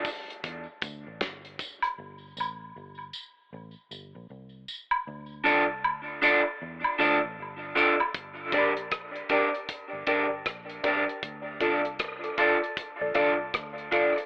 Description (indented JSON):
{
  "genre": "dub reggae",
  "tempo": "78 BPM",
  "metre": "4/4",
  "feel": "swing 62% on 16ths",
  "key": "G dorian",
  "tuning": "A4 = 440 Hz",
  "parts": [
    { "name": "damped 70s drum kit", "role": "drums", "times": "0.0-2.0, 8.1-14.3 s", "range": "hi-hat, kick drum, rim click, snare drum", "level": "-33 LUFS", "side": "equal", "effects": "tape echo" },
    { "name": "tambourine and woodblock", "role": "percussion", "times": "0.1-8.1 s", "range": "none", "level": "-32 LUFS", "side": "equal", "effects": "tape echo" },
    { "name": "vintage muted fingered electric bass", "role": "bass", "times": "0.4-13.9 s", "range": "G1 to E2", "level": "-46 LUFS", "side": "equal", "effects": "none" },
    { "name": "electric guitar at the edge of break-up", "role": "accompaniment", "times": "5.4-14.2 s", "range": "D4 to D5", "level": "-26 LUFS", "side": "right 1 dB", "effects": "tape echo" },
    { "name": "filtered dub chord stab", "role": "stabs", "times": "8.5-14.2 s", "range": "D4 to D5", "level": "-30 LUFS", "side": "left 1 dB", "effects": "phaser, tape echo" }
  ],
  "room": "moderate spring reverb, RT60 2.8 s",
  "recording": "telephone sound",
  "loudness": "-25 LUFS",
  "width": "side -24 dB against mid",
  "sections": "0.0-8.1 A section; 8.1-14.3 B section",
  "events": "break 0.0-8.1; part muted 2.0-8.1",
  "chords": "0.0 D5; 2.0 N.C.; 5.1 Dm; 8.1 Gm; 11.2 Dm",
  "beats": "0.44 1.21 | 1.98 2.75 3.52 4.29 | 5.06 5.83 6.60 7.37 | 8.14 8.91 9.69 10.46 | 11.23 12.00 12.77 13.54"
}